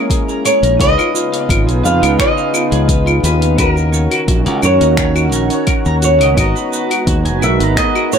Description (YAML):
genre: sunset chillout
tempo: 86 BPM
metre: 4/4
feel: straight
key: G# minor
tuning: A4 = 441 Hz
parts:
  - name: flamenco guitar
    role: melody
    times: 0.0-8.2 s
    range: A#4 to E#5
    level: -17 LUFS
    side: equal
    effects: ping-pong delay
  - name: soft electric-piano-like synth keys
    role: accompaniment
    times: 0.0-8.2 s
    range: B3 to A#5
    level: -20 LUFS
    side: moving between left 4 dB and right 7 dB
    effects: chorus, tremolo, auto-pan, ping-pong delay
  - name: lush unison pad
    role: sustained chords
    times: 0.0-8.2 s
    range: C#3 to F#4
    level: -21 LUFS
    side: left 1 dB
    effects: chorus
  - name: clean electric guitar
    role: arpeggios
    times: 0.0-8.2 s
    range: E#4 to A#5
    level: -23 LUFS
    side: right 2 dB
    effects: harmonic tremolo, ping-pong delay
  - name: deep house drum kit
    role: drums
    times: 0.1-8.2 s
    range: claves, finger snaps, hi-hat, shaker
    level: -20 LUFS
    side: left 2 dB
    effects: none
  - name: electronic kick drum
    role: drums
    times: 0.1-7.9 s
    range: none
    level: -17 LUFS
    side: equal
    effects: none
  - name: modern bright fingered electric bass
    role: bass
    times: 0.6-7.7 s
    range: F#1 to F#2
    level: -15 LUFS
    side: equal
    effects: none
room: light reverb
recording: none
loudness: -11 LUFS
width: side -7 dB against mid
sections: 0.0-8.2 A section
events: none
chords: 0.0 A#m7b5; 0.8 C#9; 3.6 D#m7; 6.4 G#m7